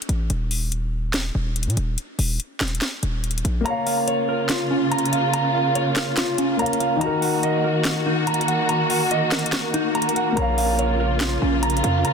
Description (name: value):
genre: hip hop, trap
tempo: 143 BPM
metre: 4/4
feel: half-time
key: unclear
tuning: A4 = 440 Hz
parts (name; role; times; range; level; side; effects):
- trap drum kit; drums; 0.0-12.1 s; handclaps, hi-hat, snare drum; -27 LUFS; left 1 dB; none
- hard-hitting 808-style bass; bass; 0.1-3.6, 10.4-12.0 s; Eb1 to Bb2; -23 LUFS; equal; none
- dark concert grand piano; accompaniment; 3.6-12.1 s; Eb3 to F5; -27 LUFS; left 6 dB; low-pass filter
- dark symphonic string section; sustained chords; 3.7-12.1 s; Db3 to Gb4; -24 LUFS; left 1 dB; none
- mellow electric guitar; arpeggios; 3.7-12.1 s; Db4 to Bb5; -22 LUFS; right 3 dB; low-pass filter, ping-pong delay
room: light reverb, small room ambience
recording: dense, heavily limited modern master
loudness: -19 LUFS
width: side -6 dB against mid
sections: 0.0-12.1 A section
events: break 0.0-3.7; kick muted 3.7-10.4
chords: 0.3 Eb5; 3.7 Bbm; 7.0 Ebm; 10.4 Bbm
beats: | 0.30 0.72 1.14 1.56 | 1.98 2.40 2.82 3.24 | 3.66 4.08 4.50 4.92 | 5.33 5.75 6.17 6.59 | 7.01 7.43 7.85 8.27 | 8.69 9.11 9.53 9.95 | 10.37 10.79 11.21 11.63 | 12.05